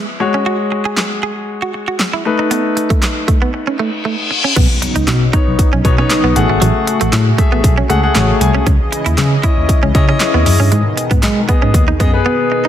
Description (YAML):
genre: dance-pop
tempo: 117 BPM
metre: 4/4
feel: straight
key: unclear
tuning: A4 = 440 Hz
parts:
  - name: warm concert grand piano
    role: accompaniment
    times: 0.0-12.7 s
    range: G#3 to G#5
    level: -17 LUFS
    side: left 4 dB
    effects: sidechain pumping
  - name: direct-recorded clean electric guitar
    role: riff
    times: 0.0-12.7 s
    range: F#3 to G#4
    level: -21 LUFS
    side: right 5 dB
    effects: wide subtle chorus
  - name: house drum kit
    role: drums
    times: 1.0-12.1 s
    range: crash cymbal, handclaps, hi-hat, kick drum, snare drum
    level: -15 LUFS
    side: equal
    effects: overdrive
  - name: reverse cymbal and impact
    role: sound effects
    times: 3.9-6.6 s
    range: none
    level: -21 LUFS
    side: left 2 dB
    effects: none
  - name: chorused pulse-width pad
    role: sustained chords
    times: 4.6-12.7 s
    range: B2 to D#5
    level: -22 LUFS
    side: equal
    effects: sidechain pumping
  - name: tine electric piano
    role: bass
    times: 4.6-12.2 s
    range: G#1 to G#3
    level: -15 LUFS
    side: equal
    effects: medium stereo tremolo, sidechain pumping
room: light reverb, digital ambience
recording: dense, heavily limited modern master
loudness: -11 LUFS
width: side -10 dB against mid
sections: 0.0-4.6 A section; 4.6-12.7 B section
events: break 3.5-4.6; reverse cymbal 3.9-4.6; impact 4.6-6.6; grand piano fill 7.9-8.7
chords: 0.2 F#sus2; 2.3 B7; 4.6 Badd9; 6.4 F#madd9; 8.7 C#madd9; 10.7 G#m